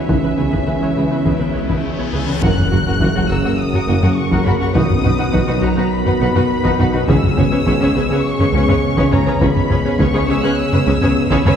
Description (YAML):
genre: cinematic, hybrid orchestral and electronic film score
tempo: 103 BPM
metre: 4/4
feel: straight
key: C# dorian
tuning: A4 = 439 Hz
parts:
  - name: warm symphonic violin section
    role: melody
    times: 0.0-11.6 s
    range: E5 to F#6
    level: -25 LUFS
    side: left 4 dB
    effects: none
  - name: rich symphonic violin section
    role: second line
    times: 0.0-11.5 s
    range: A#4 to F#5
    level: -25 LUFS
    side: left 2 dB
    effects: none
  - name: dark French horn section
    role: sustained chords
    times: 0.0-11.6 s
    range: A#3 to F#4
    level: -26 LUFS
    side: left 1 dB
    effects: none
  - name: soft additive organ-like pad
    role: sustained chords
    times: 0.0-11.6 s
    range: C#3 to C#5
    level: -23 LUFS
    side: equal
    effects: ensemble chorus, built-in reverb
  - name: thumb-piano-like synth pluck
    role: arpeggios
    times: 0.0-11.5 s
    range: C#3 to B4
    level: -25 LUFS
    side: left 3 dB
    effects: none
  - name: felt-muted upright piano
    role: texture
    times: 0.0-4.8 s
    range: F#4 to F#6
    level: -36 LUFS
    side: equal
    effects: none
  - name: clear symphonic viola section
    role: accompaniment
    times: 0.1-11.5 s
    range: A#3 to C#5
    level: -25 LUFS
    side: equal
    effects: none
  - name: dark tuba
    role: bass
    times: 0.1-11.5 s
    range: F#1 to C#2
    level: -24 LUFS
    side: right 1 dB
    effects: none
  - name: rich symphonic cello section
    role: bass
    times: 0.1-11.5 s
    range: F#2 to C#3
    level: -24 LUFS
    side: right 2 dB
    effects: none
  - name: rich symphonic double bass section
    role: bass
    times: 0.1-11.5 s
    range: F#1 to C#2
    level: -24 LUFS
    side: right 1 dB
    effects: none
  - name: solo taiko drums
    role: drums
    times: 0.1-11.6 s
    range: none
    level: -19 LUFS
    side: equal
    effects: none
  - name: reverse cymbal and impact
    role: sound effects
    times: 0.7-4.8 s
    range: none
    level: -29 LUFS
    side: left 1 dB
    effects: none
  - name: dark trombone section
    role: sustained chords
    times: 2.4-11.6 s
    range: C#3 to G#3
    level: -25 LUFS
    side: right 2 dB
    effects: none
room: wet scoring stage reverb, RT60 1.7 s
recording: heard from further back in the room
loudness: -13 LUFS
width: side -8 dB against mid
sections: 0.0-2.4 A section; 2.4-11.6 B section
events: reverse cymbal 0.7-2.4; impact 2.4-4.8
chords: 0.0 C#m7; 2.4 F#; 4.8 B; 7.1 C#m7